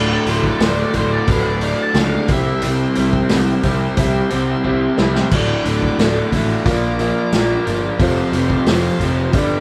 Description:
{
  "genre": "classic rock",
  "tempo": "90 BPM",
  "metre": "4/4",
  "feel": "straight",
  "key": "unclear",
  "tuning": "A4 = 440 Hz",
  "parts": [
    { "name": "octave-fuzz lead guitar", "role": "second line", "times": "0.0-2.6 s", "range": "F4 to A5", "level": "-27 LUFS", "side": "equal", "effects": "distortion" },
    { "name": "warm concert grand piano", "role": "accompaniment", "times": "0.0-9.6 s", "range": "F4 to A5", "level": "-27 LUFS", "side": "equal", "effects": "none" },
    { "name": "bright tonewheel organ", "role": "sustained chords", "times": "0.0-9.6 s", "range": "C4 to D5", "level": "-31 LUFS", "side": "equal", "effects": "slow rotary speaker, overdrive" },
    { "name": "crunchy overdriven guitar", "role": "riff", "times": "0.0-9.6 s", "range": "D2 to C4", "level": "-21 LUFS", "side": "equal", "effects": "none" },
    { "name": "fuzz picked electric bass", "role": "bass", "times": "0.0-9.6 s", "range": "D1 to C#2", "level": "-24 LUFS", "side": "equal", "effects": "overdrive" },
    { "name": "vintage drum kit", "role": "drums", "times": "0.3-9.5 s", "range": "crash cymbal, hi-hat, kick drum, snare drum", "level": "-22 LUFS", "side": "equal", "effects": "none" }
  ],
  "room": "moderate large studio reverb, RT60 1.1 s",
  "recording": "band playing live in one room",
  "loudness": "-17 LUFS",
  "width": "mono",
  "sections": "0.0-9.6 A section",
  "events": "grand piano fill 4.3-5.3; drum fill 4.7-5.3",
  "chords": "0.0 D; 2.3 C; 5.3 D; 6.7 Bb; 8.0 F"
}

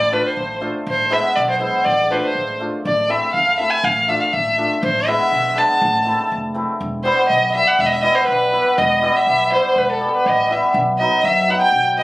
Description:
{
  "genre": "klezmer",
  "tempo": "121 BPM",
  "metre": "2/4",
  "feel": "straight",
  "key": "A harmonic minor, E harmonic minor from 6.8 s",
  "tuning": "A4 = 445 Hz",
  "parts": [
    { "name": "dark violin", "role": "melody", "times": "0.0-12.0 s", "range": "A4 to A5", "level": "-16 LUFS", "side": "equal", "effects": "none" },
    { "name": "upright bass", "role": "bass", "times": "0.0-12.0 s", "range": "E1 to F#2", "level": "-28 LUFS", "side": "equal", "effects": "none" },
    { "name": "hammered dulcimer", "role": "accompaniment", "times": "0.1-12.0 s", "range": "F#3 to G4", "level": "-20 LUFS", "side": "equal", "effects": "none" }
  ],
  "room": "moderate studio reverb, RT60 0.5 s",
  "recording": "recorded on a phone in the room, club reverb",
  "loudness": "-15 LUFS",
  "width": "side -19 dB against mid",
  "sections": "0.0-6.8 A section; 6.8-12.0 B section",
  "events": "none",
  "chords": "0.0 Dm/A; 0.9 E/A; 1.8 Dm/A; 2.8 Am; 3.8 Dm/A; 4.8 E/A; 5.8 Am; 6.8 Em; 10.7 B"
}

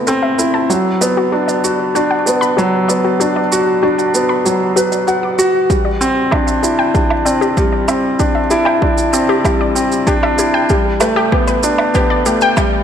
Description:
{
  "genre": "piano and strings electronica",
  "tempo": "96 BPM",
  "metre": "4/4",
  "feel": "straight",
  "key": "unclear",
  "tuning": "A4 = 445 Hz",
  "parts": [
    { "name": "felt-muted upright piano", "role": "riff", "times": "0.0-12.8 s", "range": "F#3 to F#5", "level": "-14 LUFS", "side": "equal", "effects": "tape echo, shimmer reverb" },
    { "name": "wide unison pluck", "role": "arpeggios", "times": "0.1-12.6 s", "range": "F#4 to D6", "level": "-19 LUFS", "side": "left 3 dB", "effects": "sidechain pumping, tape echo, shimmer reverb" },
    { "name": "shaker and woodblock", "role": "drums", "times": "0.1-12.7 s", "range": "none", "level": "-22 LUFS", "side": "right 4 dB", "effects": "overdrive, small room ambience" },
    { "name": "electronic kick drum", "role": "drums", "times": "5.7-12.7 s", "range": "none", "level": "-18 LUFS", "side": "equal", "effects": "overdrive, small room ambience" }
  ],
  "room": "wet concert hall reverb, RT60 2.3 s",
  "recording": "none",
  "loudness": "-12 LUFS",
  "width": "side -8 dB against mid",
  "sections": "0.0-12.8 A section",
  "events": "build-up 0.0-12.8; filter sweep on synth arpeggio sound 0.0-12.8",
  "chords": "0.0 Amadd9; 0.7 Bm; 5.7 Cadd9; 10.7 Gadd9"
}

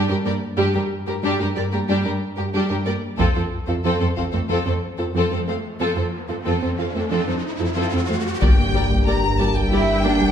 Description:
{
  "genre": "cinematic, hybrid orchestral and electronic film score",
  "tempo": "92 BPM",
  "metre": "4/4",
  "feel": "straight",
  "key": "G minor",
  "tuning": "A4 = 440 Hz",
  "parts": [
    { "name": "warm symphonic violin section", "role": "second line", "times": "0.0-10.1 s", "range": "D4 to F5", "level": "-27 LUFS", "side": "left 4 dB", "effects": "none" },
    { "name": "warm symphonic viola section", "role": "accompaniment", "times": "0.0-10.1 s", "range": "G3 to A4", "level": "-27 LUFS", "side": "right 1 dB", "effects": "none" },
    { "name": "soft round pluck", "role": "arpeggios", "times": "0.0-10.3 s", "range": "F3 to G4", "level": "-27 LUFS", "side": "right 2 dB", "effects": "chorus" },
    { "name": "rich symphonic cello section", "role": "bass", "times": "0.1-10.3 s", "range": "F2 to E4", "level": "-24 LUFS", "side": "right 2 dB", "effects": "none" },
    { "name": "taiko ensemble", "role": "drums", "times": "3.2-4.5, 8.4-10.3 s", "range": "none", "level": "-21 LUFS", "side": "left 1 dB", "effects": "none" },
    { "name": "riser and impact", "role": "sound effects", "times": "4.8-10.3 s", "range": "none", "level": "-30 LUFS", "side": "equal", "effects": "none" },
    { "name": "rich studio violin section", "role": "melody", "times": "8.4-10.3 s", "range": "G5 to Bb5", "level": "-24 LUFS", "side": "left 3 dB", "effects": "none" },
    { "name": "mellow French horn section", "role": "sustained chords", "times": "8.4-10.3 s", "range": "Bb3 to G4", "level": "-26 LUFS", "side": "left 5 dB", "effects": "none" },
    { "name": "warm trombone section", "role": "sustained chords", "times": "8.4-10.3 s", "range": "D3 to G3", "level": "-28 LUFS", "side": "right 2 dB", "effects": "none" },
    { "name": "clear symphonic double bass section", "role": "bass", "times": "8.4-10.3 s", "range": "G2", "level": "-27 LUFS", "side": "right 2 dB", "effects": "none" },
    { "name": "pure sine sub bass", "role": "bass", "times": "8.4-10.3 s", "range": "G1", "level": "-25 LUFS", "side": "left 1 dB", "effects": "none" }
  ],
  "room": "wet recital hall reverb, RT60 1.6 s",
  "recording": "recorded in a church or concert hall",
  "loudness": "-19 LUFS",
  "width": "side -8 dB against mid",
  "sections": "0.0-8.4 A section; 8.4-10.3 B section",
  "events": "build-up 0.0-8.4; riser 4.8-8.4; impact 8.4-10.3",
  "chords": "0.0 Gm; 3.2 F; 8.4 Gm"
}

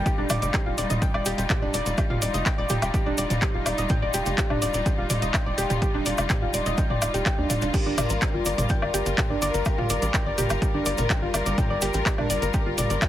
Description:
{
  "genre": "melodic techno",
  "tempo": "125 BPM",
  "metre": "4/4",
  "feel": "straight",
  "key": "unclear",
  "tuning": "A4 = 441 Hz",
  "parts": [
    { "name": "rich symphonic string section", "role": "sustained chords", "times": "0.0-13.1 s", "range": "G3 to Bb4", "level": "-31 LUFS", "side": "left 2 dB", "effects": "sidechain pumping" },
    { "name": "tight sequencer bass", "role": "bass", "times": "0.0-13.0 s", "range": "Eb1 to Eb2", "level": "-29 LUFS", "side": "equal", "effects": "sidechain pumping" },
    { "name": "soft round pluck", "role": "arpeggios", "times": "0.1-13.1 s", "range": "D4 to G6", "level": "-28 LUFS", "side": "equal", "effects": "chorus, sidechain pumping, dub echo" },
    { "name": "electronic kick drum", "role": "drums", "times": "0.1-13.1 s", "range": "none", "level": "-25 LUFS", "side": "equal", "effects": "none" },
    { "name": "techno drum kit", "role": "drums", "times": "0.1-13.1 s", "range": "crash cymbal, handclaps, hi-hat, toms, woodblock", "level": "-28 LUFS", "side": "equal", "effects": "none" },
    { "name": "cabasa", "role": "percussion", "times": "0.1-13.1 s", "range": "none", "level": "-35 LUFS", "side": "right 3 dB", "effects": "none" }
  ],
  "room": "light reverb, digital ambience",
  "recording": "heavily compressed radio sound",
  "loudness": "-22 LUFS",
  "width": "side -12 dB against mid",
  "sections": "0.0-13.1 A section",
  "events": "none",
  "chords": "0.1 Ebadd9; 7.7 Gm7"
}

